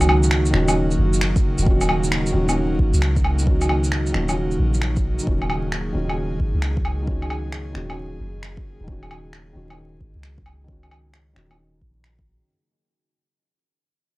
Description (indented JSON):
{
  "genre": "future garage",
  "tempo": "133 BPM",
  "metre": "4/4",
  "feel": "swing 65% on 16ths",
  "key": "Eb minor",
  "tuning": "A4 = 438 Hz",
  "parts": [
    { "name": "felt-muted upright piano", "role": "accompaniment", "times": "0.0-12.5 s", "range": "Eb3 to Gb4", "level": "-26 LUFS", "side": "equal", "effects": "vintage 12-bit sampler grit, sidechain pumping, tape echo" },
    { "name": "airy breathy pad", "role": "sustained chords", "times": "0.0-12.5 s", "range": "Db3 to Ab4", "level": "-27 LUFS", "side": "right 2 dB", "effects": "chorus, vintage 12-bit sampler grit, sidechain pumping" },
    { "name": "soft 808-style bass", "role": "bass", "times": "0.0-12.4 s", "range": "Eb1 to Db2", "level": "-22 LUFS", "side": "equal", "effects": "tube saturation, sidechain pumping" },
    { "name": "electronic shaker, woodblock and finger snaps", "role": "drums", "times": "0.0-12.2 s", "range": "none", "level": "-26 LUFS", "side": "equal", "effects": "none" },
    { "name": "electronic kick drum", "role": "drums", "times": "1.4-12.2 s", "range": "none", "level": "-22 LUFS", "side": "equal", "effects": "none" }
  ],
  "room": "light reverb, digital ambience",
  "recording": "dry, gritty hardware recording, transformer saturation, vinyl crackle",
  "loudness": "-18 LUFS",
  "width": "side -20 dB against mid",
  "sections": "0.0-12.5 A section",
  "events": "fade-out 0.0-12.5",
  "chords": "0.0 Ebm7"
}